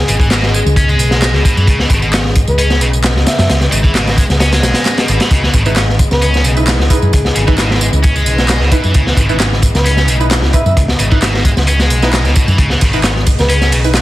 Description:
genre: breakbeat, breaks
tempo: 132 BPM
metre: 4/4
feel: straight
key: C# minor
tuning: A4 = 440 Hz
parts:
  - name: breathy flute-like synth lead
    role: melody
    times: 0.0-13.5 s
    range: G#4 to E5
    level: -22 LUFS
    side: equal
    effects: chorus, old record sound, digital delay
  - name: dark studio string section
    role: sustained chords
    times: 0.0-14.0 s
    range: C#3 to D#5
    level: -22 LUFS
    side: left 2 dB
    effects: sidechain pumping
  - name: heavy high-gain guitar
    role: riff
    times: 0.1-13.8 s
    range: B2 to C#4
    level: -18 LUFS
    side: equal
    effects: distortion, digital delay
  - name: hollow-body short-scale fingered electric bass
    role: bass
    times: 0.1-14.0 s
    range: G#1 to F#2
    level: -14 LUFS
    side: equal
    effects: none
  - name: crunchy breakbeat drum kit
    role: drums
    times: 0.1-14.0 s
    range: hi-hat, kick drum, snare drum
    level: -13 LUFS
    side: equal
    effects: none
  - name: house drum kit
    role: drums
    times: 0.1-14.0 s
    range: handclaps, ride cymbal, tambourine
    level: -22 LUFS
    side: right 2 dB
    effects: none
  - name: orchestra-hit-like synth stab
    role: stabs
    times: 5.7-14.0 s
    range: D#4 to B4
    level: -21 LUFS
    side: right 2 dB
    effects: built-in reverb, digital delay
room: light reverb, studio reverb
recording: dense, heavily limited modern master, vinyl crackle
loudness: -9 LUFS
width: side -16 dB against mid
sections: 0.0-14.0 A section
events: kick drops out 4.4-5.3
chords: 0.0 C#m9

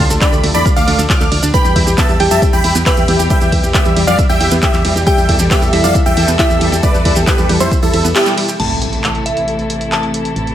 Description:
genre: uplifting trance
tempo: 136 BPM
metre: 4/4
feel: straight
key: unclear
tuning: A4 = 443 Hz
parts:
  - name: supersaw stab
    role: melody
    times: 0.0-8.5 s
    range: E4 to F6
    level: -17 LUFS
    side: equal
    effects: sidechain pumping, tape echo
  - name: glassy synth bell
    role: second line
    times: 0.0-10.5 s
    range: E4 to B5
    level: -20 LUFS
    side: equal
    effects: chorus, tremolo, tape echo
  - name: rich studio string section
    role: sustained chords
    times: 0.0-10.5 s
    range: A2 to A4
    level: -21 LUFS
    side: left 1 dB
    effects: sidechain pumping, low-pass filter
  - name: analog pluck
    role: arpeggios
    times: 0.0-8.6 s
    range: G3 to F5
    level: -21 LUFS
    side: right 3 dB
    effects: chorus, cassette tape, sidechain pumping, tape echo
  - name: solid FM bass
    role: bass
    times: 0.0-10.5 s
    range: A1 to F2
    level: -18 LUFS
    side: equal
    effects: sidechain pumping
  - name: punchy analog drum machine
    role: drums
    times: 0.1-10.5 s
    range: crash cymbal, handclaps, hi-hat, ride cymbal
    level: -20 LUFS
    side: equal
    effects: sidechain pumping on hats, sidechain pumping on cymbals
  - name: maracas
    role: percussion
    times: 0.1-8.6 s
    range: none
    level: -25 LUFS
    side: right 3 dB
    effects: none
  - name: electronic kick drum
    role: drums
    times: 0.2-7.8 s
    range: none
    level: -15 LUFS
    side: equal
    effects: none
  - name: impact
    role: sound effects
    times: 8.6-10.4 s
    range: none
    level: -25 LUFS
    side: equal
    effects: none
room: light reverb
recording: none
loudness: -10 LUFS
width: side -11 dB against mid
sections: 0.0-8.6 A section; 8.6-10.5 B section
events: drop 0.0-8.6; band accent 8.2; impact 8.6-10.4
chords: 0.0 Dm; 1.5 Em; 8.6 Am

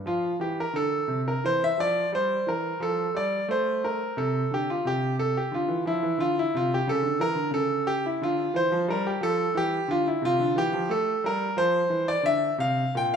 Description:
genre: classical, baroque-style suite movement for grand piano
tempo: 88 BPM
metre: 4/4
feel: rubato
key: F major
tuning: A4 = 440 Hz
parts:
  - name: clear concert grand piano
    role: solo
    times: 0.0-13.2 s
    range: Bb2 to G5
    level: -23 LUFS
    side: equal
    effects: none
room: wet recital hall reverb, RT60 1.6 s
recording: minimal, uncompressed stereo recording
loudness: -23 LUFS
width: side -7 dB against mid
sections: 0.0-13.2 A section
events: none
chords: 0.0 F5; 1.4 Em7b5; 2.8 F; 5.5 Dm; 6.9 C#dim7; 8.2 Dm; 10.9 F; 12.2 Bb

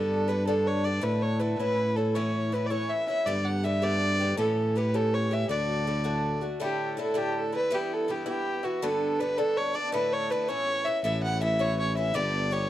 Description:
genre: celtic folk, Celtic jig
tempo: 108 BPM (dotted quarters)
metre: 6/8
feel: straight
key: unclear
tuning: A4 = 440 Hz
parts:
  - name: dark fiddle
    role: melody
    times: 0.0-12.7 s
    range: F#4 to F#5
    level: -28 LUFS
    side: right 1 dB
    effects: none
  - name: Irish bouzouki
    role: accompaniment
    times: 0.0-12.7 s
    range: G2 to G4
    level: -32 LUFS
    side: left 2 dB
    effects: none
  - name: dark tuba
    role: bass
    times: 0.0-6.6, 11.0-12.7 s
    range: G1 to A2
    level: -28 LUFS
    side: equal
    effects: none
room: little or no reverb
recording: dry, close 1970s-style studio recording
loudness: -25 LUFS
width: side -13 dB against mid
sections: 0.0-6.6 A section; 6.6-12.7 A section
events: none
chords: 0.0 G; 1.0 Asus4; 1.6 A; 3.3 G; 4.4 A7; 5.5 D; 6.6 Dsus2; 7.7 Em; 8.8 G; 9.9 Asus4; 10.5 A; 12.2 G

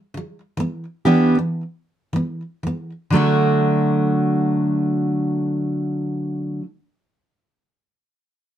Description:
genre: pop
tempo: 89-102 BPM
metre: 4/4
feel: swing 55% on 16ths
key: D major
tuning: A4 = 441 Hz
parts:
  - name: picked steel-string acoustic guitar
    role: accompaniment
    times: 0.1-6.7 s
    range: D3 to G4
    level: -18 LUFS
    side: equal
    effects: none
room: light reverb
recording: none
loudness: -18 LUFS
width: side -10 dB against mid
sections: 0.0-3.1 A section; 3.1-5.8 B section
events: slowing down 0.0-3.1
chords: 0.0 D; 0.6 Em7; 3.1 D

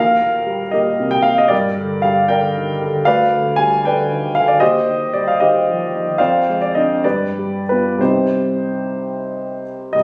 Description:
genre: classical, romantic character piece for solo piano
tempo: 59-80 BPM (dotted quarters)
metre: 6/8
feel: rubato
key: C minor from 3.1 s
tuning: A4 = 440 Hz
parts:
  - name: warm grand piano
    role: solo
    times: 0.0-10.0 s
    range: C2 to Ab5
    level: -17 LUFS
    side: equal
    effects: none
room: moderate recital hall reverb, RT60 1.5 s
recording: recorded on a phone in the room, studio reverb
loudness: -17 LUFS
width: mono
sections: 0.0-9.9 A section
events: none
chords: 0.0 Eb; 1.5 Gm; 3.1 G7/D; 4.6 Cm/Eb; 6.2 Dm7b5/F; 7.0 G7; 8.0 Cm

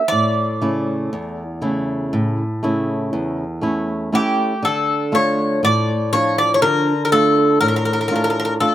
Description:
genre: greek folk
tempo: 120 BPM (eighths)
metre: 9/8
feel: straight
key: D harmonic minor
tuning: A4 = 437 Hz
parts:
  - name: Greek bouzouki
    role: melody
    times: 0.0-8.7 s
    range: G4 to D5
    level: -17 LUFS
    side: equal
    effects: slapback echo
  - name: flamenco guitar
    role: accompaniment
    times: 0.1-8.7 s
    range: E2 to F4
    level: -19 LUFS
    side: equal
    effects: slapback echo
room: light reverb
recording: recorded outdoors, with no room sound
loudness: -16 LUFS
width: side -12 dB against mid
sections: 0.0-4.6 A section; 4.6-8.7 B section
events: none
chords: 0.1 A; 4.6 Dm

